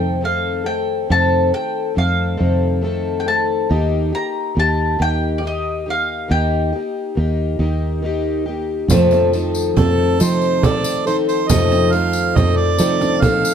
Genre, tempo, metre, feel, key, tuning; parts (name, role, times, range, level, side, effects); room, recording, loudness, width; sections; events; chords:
acoustic folk duo or small band; 46 BPM (dotted quarters); 6/8; straight; F mixolydian; A4 = 442 Hz
mandolin; melody; 0.0-8.0 s; D5 to Bb5; -22 LUFS; equal
fingerpicked plugged-in twelve-string acoustic guitar; accompaniment; 0.0-13.5 s; F2 to A4; -20 LUFS; left 4 dB
fingered electric bass; bass; 0.0-13.5 s; Eb2 to F3; -20 LUFS; right 1 dB
picked steel-string acoustic guitar; arpeggios; 8.9-13.5 s; F3 to A4; -21 LUFS; right 4 dB
cajon; percussion; 8.9-13.4 s; -19 LUFS; right 3 dB
tambourine; percussion; 8.9-13.5 s; -29 LUFS; left 5 dB
clear harmonica; second line; 9.8-13.5 s; A4 to F5; -20 LUFS; right 6 dB
light reverb; -15 LUFS; side -8 dB against mid
0.0-8.9 A section; 8.9-13.5 B section
harmonica solo 8.9-13.5
0.0 F7; 3.7 Eb; 8.9 F7